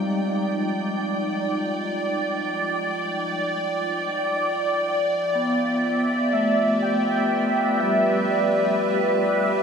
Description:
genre	ambient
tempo	61 BPM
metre	4/4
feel	straight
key	unclear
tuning	A4 = 437 Hz
part	evolving wavetable pad	sustained chords	0.0-9.6 s	Eb4 to E5	-24 LUFS	right 2 dB	phaser, built-in reverb
part	vibraphone with medium mallets	arpeggios	0.0-9.6 s	G3 to E5	-26 LUFS	left 1 dB	diffuse ambient delay
part	analog drone	drone	0.0-9.6 s	F3 to F4	-35 LUFS	equal	chorus
part	warm studio violin section	texture	0.0-9.6 s	G5	-36 LUFS	equal	none
part	warm velvety synth lead	melody	4.4-9.6 s	D5 to G5	-24 LUFS	equal	chorus, diffuse ambient delay
room	wet huge ambient reverb, RT60 7.2 s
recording	none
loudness	-20 LUFS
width	side -6 dB against mid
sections	0.0-9.6 A section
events	none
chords	0.0 Ab; 4.4 Em7

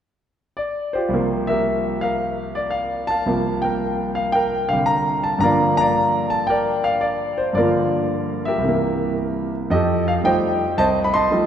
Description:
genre	solo jazz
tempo	112 BPM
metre	4/4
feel	swing 69% on 8ths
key	unclear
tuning	A4 = 440 Hz
part	warm concert grand piano	solo	0.6-11.5 s	C2 to C6	-18 LUFS	equal	none
room	wet church reverb, RT60 3.5 s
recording	recorded in a church or concert hall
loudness	-18 LUFS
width	side -9 dB against mid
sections	0.0-1.1 A section; 1.1-9.7 B section; 9.7-11.5 C section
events	none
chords	0.0 Fsus2; 1.1 C7sus4; 8.6 C7; 9.7 F9

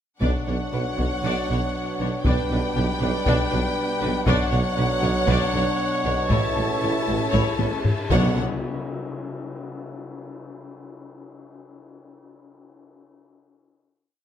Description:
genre	cinematic, epic orchestral film score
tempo	118 BPM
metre	4/4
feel	straight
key	B minor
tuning	A4 = 440 Hz
part	rich symphonic violin section	melody	0.2-8.4 s	F#5 to A5	-31 LUFS	left 5 dB	none
part	warm symphonic violin section	second line	0.2-8.4 s	E4 to D5	-32 LUFS	left 4 dB	none
part	clear symphonic viola section	accompaniment	0.2-8.4 s	D4 to E4	-33 LUFS	equal	none
part	dark French horn section	sustained chords	0.2-8.3 s	B3 to E4	-32 LUFS	left 6 dB	none
part	rich symphonic string section	sustained chords	0.2-8.4 s	B3 to G5	-32 LUFS	left 1 dB	none
part	warm trombone section	sustained chords	0.2-8.3 s	A2 to A3	-31 LUFS	right 4 dB	none
part	mellow trumpet	stabs	0.2-8.3 s	B4 to C#5	-30 LUFS	right 1 dB	none
part	clear tuba	bass	0.2-8.3 s	A1 to B1	-30 LUFS	right 4 dB	none
part	dark symphonic double bass section	bass	0.2-8.4 s	A1 to B1	-29 LUFS	right 2 dB	none
part	warm symphonic cello section	bass	0.2-8.4 s	A2 to B2	-28 LUFS	right 2 dB	none
part	taiko ensemble	drums	0.2-9.1 s	none	-26 LUFS	left 1 dB	none
part	timpani	percussion	0.2-0.9, 8.1-8.4 s	B2	-33 LUFS	left 3 dB	none
part	cymbal swell and tam-tam	percussion	4.3-10.1 s	none	-34 LUFS	left 3 dB	none
room	light reverb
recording	close, detailed microphones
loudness	-20 LUFS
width	side -9 dB against mid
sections	0.2-8.4 theme; 8.4-10.4 final hit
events	drum fill 7.6-8.4; band accent 8.4-8.9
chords	0.2 Bmadd9; 2.3 G/B; 4.3 Bmadd9; 6.3 A; 8.1 Bmadd9; 8.4 N.C.

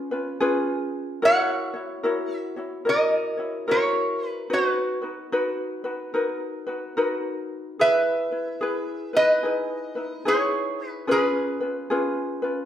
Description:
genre	hawaiian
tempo	73 BPM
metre	4/4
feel	swing 64% on 8ths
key	B major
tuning	A4 = 441 Hz
part	ukulele	accompaniment	0.0-12.7 s	C#4 to C#5	-26 LUFS	left 1 dB	none
part	lap resonator guitar	melody	1.3-12.7 s	F#4 to F#5	-22 LUFS	right 1 dB	none
room	wet large studio reverb, RT60 1.4 s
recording	band playing live in one room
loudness	-22 LUFS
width	side -10 dB against mid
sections	0.0-12.7 A section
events	none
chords	0.0 C#7; 1.2 F#7; 4.5 Bmaj7; 7.8 Emaj7; 11.1 C#7

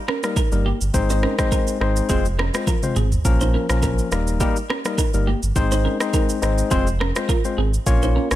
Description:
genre	afrobeats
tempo	104 BPM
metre	4/4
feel	swing 55% on 16ths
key	F minor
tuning	A4 = 440 Hz
part	clean electric guitar	riff	0.1-8.3 s	Bb3 to C5	-27 LUFS	right 4 dB	lush chorus, ping-pong delay
part	afro-pop drum kit	drums	0.1-8.4 s	kick drum, rim click, shaker, toms	-22 LUFS	right 1 dB	none
part	barky tine electric piano	accompaniment	0.2-8.4 s	F3 to Db5	-24 LUFS	left 5 dB	none
part	sub bass with octave	bass	0.5-8.4 s	Eb1 to Bb1	-21 LUFS	equal	none
room	digital ambience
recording	none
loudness	-18 LUFS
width	side -14 dB against mid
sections	0.0-3.3 A section; 3.3-8.4 B section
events	drum fill 2.7-3.3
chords	0.0 Eb; 0.9 Ab; 2.1 Fm; 3.3 Bbm; 4.1 Eb; 5.6 Ab; 6.7 Fm

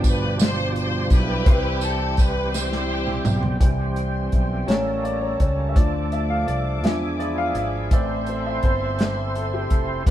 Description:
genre	slow gospel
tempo	56 BPM (dotted quarters)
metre	6/8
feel	straight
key	unclear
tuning	A4 = 440 Hz
part	warm studio string section	melody	0.0-3.6 s	B3 to C5	-26 LUFS	left 2 dB	none
part	warm upright piano	accompaniment	0.0-10.1 s	G2 to B5	-28 LUFS	left 2 dB	none
part	overdriven tonewheel organ	sustained chords	0.0-10.1 s	B2 to C5	-28 LUFS	right 3 dB	slow rotary speaker, chorus vibrato
part	fingered electric bass	bass	0.0-10.1 s	F1 to E2	-26 LUFS	equal	none
part	warm soul drum kit	drums	0.0-10.1 s	hi-hat, kick drum, snare drum, toms	-19 LUFS	equal	none
part	tambourine	percussion	0.0-3.6 s	none	-34 LUFS	right 6 dB	none
part	dark symphonic string section	sustained chords	3.6-10.1 s	B4 to D6	-36 LUFS	equal	none
room	moderate studio reverb, RT60 0.8 s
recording	band playing live in one room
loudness	-19 LUFS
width	side -12 dB against mid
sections	0.0-3.6 A section; 3.6-10.1 B section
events	drum fill 2.5-3.6; upright piano solo 3.6-10.1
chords	0.0 G7; 1.5 Cmaj7; 4.7 A7b9; 5.8 Dm; 6.8 E7b9; 7.9 Am

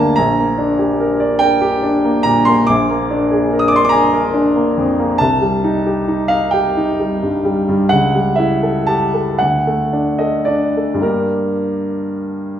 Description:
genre	classical, romantic nocturne for solo piano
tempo	35-50 BPM (dotted quarters)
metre	6/8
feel	rubato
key	G minor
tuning	A4 = 440 Hz
part	warm baby grand piano	solo	0.0-12.6 s	G1 to Eb6	-13 LUFS	equal	none
room	wet recital hall reverb, RT60 1.4 s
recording	minimal, uncompressed stereo recording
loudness	-13 LUFS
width	side -10 dB against mid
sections	0.0-12.6 A section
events	none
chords	0.2 Gm/Bb; 2.7 Bb7; 5.2 Cm; 7.9 A7/C#; 9.4 D; 11.0 Gm

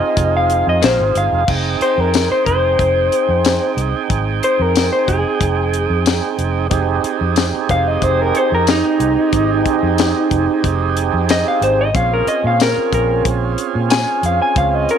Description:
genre	straight-eighth soul blues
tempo	92 BPM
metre	4/4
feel	swing 54% on 16ths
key	F minor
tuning	A4 = 440 Hz
part	electric guitar through a small old amp	melody	0.0-15.0 s	Eb4 to Ab5	-16 LUFS	left 2 dB	none
part	tonewheel organ	accompaniment	0.0-15.0 s	C4 to G5	-20 LUFS	right 11 dB	slow rotary speaker, overdrive
part	vintage muted fingered electric bass	bass	0.2-14.9 s	F1 to Bb2	-20 LUFS	equal	none
part	tight funk drum kit	drums	0.2-15.0 s	crash cymbal, hi-hat, kick drum, snare drum, tambourine	-19 LUFS	left 5 dB	none
part	direct-recorded clean electric guitar	stabs	0.8-1.0 s	Eb3 to F4	-28 LUFS	left 9 dB	analog chorus
room	light reverb, small room ambience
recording	1960s-style stereo with parts hard left and right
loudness	-13 LUFS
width	side -8 dB against mid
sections	0.0-1.5 A section; 1.5-15.0 A section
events	clean electric guitar solo 0.0-1.5, 1.5-15.0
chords	0.0 Fm7; 11.9 Bbm7

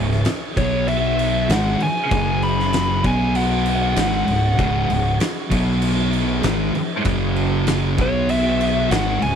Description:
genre	stoner and doom metal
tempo	97 BPM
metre	4/4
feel	straight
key	unclear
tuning	A4 = 440 Hz
part	string machine, full ensemble	sustained chords	0.0-9.4 s	F#3 to C#5	-34 LUFS	right 2 dB	phaser, ensemble chorus
part	thick fuzz guitar	riff	0.0-9.4 s	C#2 to B3	-23 LUFS	left 8 dB	distortion
part	thick fuzz guitar	riff	0.0-9.4 s	C#2 to B3	-23 LUFS	right 10 dB	distortion
part	fuzz fingered electric bass	bass	0.0-9.4 s	C#1 to B1	-25 LUFS	equal	overdrive
part	oversized low-tuned drum kit	drums	0.1-9.4 s	crash cymbal, kick drum, snare drum	-24 LUFS	equal	none
part	fuzz lead guitar	melody	0.6-9.4 s	C#5 to B5	-23 LUFS	left 2 dB	distortion, tape echo
room	little or no reverb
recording	none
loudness	-17 LUFS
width	side -8 dB against mid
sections	0.0-9.4 A section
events	lead electric guitar solo 0.0-9.4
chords	0.0 C#5; 0.6 B5; 1.5 C#5; 2.1 F#5; 3.0 B5; 4.0 C#5; 5.5 B5; 6.4 C#5; 7.1 F#5; 8.0 B5

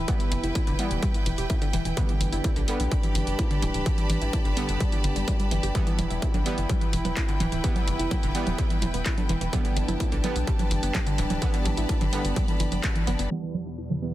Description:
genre	melodic techno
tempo	127 BPM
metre	4/4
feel	straight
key	E minor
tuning	A4 = 440 Hz
part	dark analog pad	sustained chords	0.0-14.1 s	E3 to B5	-34 LUFS	left 2 dB	wide subtle chorus, sidechain pumping
part	wide unison pluck	arpeggios	0.0-14.0 s	D3 to G4	-33 LUFS	equal	sidechain pumping, dub echo
part	tight sequencer bass	bass	0.0-13.3 s	D1 to B1	-29 LUFS	equal	sidechain pumping
part	rich symphonic string section	texture	0.0-14.1 s	E4 to B5	-35 LUFS	right 1 dB	sidechain pumping
part	synth brass stab	stabs	0.1-14.1 s	D3 to B3	-34 LUFS	right 3 dB	chorus, sidechain pumping, dub echo
part	electronic kick drum	drums	0.1-12.9 s	none	-26 LUFS	equal	distortion
part	techno drum kit	drums	0.1-14.0 s	congas, handclaps, hi-hat	-33 LUFS	right 2 dB	sidechain pumping on hats, low-pass filter on hats, sidechain pumping on perc, low-pass filter on perc, low-pass filter on snare, low-pass filter on room
part	analog drone	drone	13.5-14.1 s	E2 to B2	-38 LUFS	equal	chorus, sidechain pumping
part	downlifter	sound effects	13.5-14.1 s	none	-60 LUFS	left 1 dB	none
room	little or no reverb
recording	dense, heavily limited modern master, low-pass filter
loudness	-23 LUFS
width	side -14 dB against mid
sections	0.0-13.3 A section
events	band accent 12.8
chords	0.0 Em; 2.0 G; 5.8 Em; 9.5 G; 13.3 Em

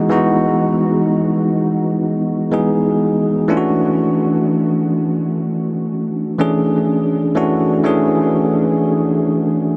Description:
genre	R&B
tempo	62 BPM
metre	4/4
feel	straight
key	unclear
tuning	A4 = 440 Hz
part	barky tine electric piano	solo	0.0-9.8 s	E3 to G#4	-17 LUFS	equal	analog delay
room	wet huge ambient reverb, RT60 7.0 s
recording	dreamy mix soaked in reverb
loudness	-17 LUFS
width	mono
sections	0.0-9.8 A section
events	none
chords	0.0 Emaj9; 3.5 Dmaj9

